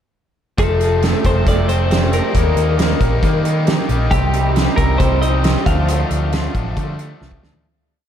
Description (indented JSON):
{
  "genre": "indie rock",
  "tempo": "136 BPM",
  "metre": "4/4",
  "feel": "straight",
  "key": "unclear",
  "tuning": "A4 = 442 Hz",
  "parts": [
    { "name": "twelve-string electric guitar", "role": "melody", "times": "0.6-6.9 s", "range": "G4 to F5", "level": "-21 LUFS", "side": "left 2 dB", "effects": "wide subtle chorus, ping-pong delay" },
    { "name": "biting overdriven guitar", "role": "riff", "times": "0.6-7.6 s", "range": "F2 to Eb4", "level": "-25 LUFS", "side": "left 6 dB", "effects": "none" },
    { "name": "raw garage guitar", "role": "riff", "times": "0.6-7.7 s", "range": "F3 to G4", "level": "-24 LUFS", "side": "right 6 dB", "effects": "overdrive, lush chorus, ping-pong delay" },
    { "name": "picked electric bass", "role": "bass", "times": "0.6-7.6 s", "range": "F1 to Eb3", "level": "-18 LUFS", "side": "equal", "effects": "none" },
    { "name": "loose indie drum kit", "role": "drums", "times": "0.6-7.6 s", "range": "hi-hat, kick drum, snare drum, toms", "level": "-19 LUFS", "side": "right 1 dB", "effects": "none" }
  ],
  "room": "moderate huge ambient reverb, RT60 7.8 s",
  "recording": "dreamy mix soaked in reverb",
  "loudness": "-14 LUFS",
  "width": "side -9 dB against mid",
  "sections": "0.6-7.6 pre-chorus",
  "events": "fade-out 5.9-7.6; drum fill 7.2-7.6",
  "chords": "0.6 Fadd9; 2.3 Eb; 4.1 Cm; 5.7 Dm"
}